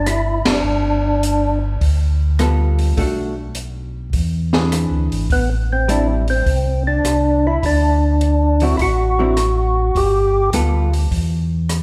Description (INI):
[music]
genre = soul jazz organ trio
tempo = 103 BPM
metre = 4/4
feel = swing 68% on 8ths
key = G major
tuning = A4 = 441 Hz
[part]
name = percussive tonewheel organ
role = melody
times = 0.0-1.6, 5.3-10.5 s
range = B3 to G4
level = -20 LUFS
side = equal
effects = slow rotary speaker, overdrive
[part]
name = mellow tonewheel organ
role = bass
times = 0.0-11.8 s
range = F#1 to E2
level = -20 LUFS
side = equal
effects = slow rotary speaker
[part]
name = open jazz drum kit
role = drums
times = 0.1-11.8 s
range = hi-hat, kick drum, ride cymbal, rim click, snare drum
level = -26 LUFS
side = equal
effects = none
[part]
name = vintage hollow-body jazz guitar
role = accompaniment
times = 2.4-10.9 s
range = D3 to A4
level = -25 LUFS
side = equal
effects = none
[sound]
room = moderate recital hall reverb, RT60 1.7 s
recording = recorded in a church or concert hall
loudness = -17 LUFS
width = mono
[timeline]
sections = 0.0-11.8 A section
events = band accent 0.4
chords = 0.0 Cadd9 (rootless); 0.6 G9; 3.0 Bm7; 4.1 Eaug7; 5.3 Am7; 7.6 D9; 10.0 G9; 11.1 N.C.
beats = 0.07 | 0.65 1.23 1.81 2.39 | 2.98 3.56 4.14 4.72 | 5.30 5.88 6.46 7.05 | 7.63 8.21 8.79 9.37 | 9.95 10.53 11.11 11.69